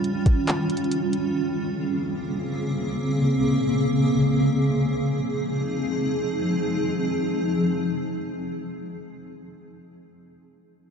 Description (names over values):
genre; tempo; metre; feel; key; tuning
hip hop, atmospheric cloud-rap; free time; none; none; F minor; A4 = 443 Hz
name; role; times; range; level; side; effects
granular cloud pad; sustained chords; 0.0-9.1 s; Db3 to Ab4; -22 LUFS; equal; built-in reverb, sidechain pumping
smooth R&B drum kit; drums; 0.0-1.2 s; handclaps, hi-hat, kick drum; -22 LUFS; equal; vintage 12-bit sampler grit
room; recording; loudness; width
light reverb, digital ambience; dark, warm production, nothing above 10.8 kHz; -22 LUFS; side -6 dB against mid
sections
0.0-4.8 A section; 4.8-8.3 B section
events
none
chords
0.0 Eb9; 1.3 Bbm9; 4.8 Fm7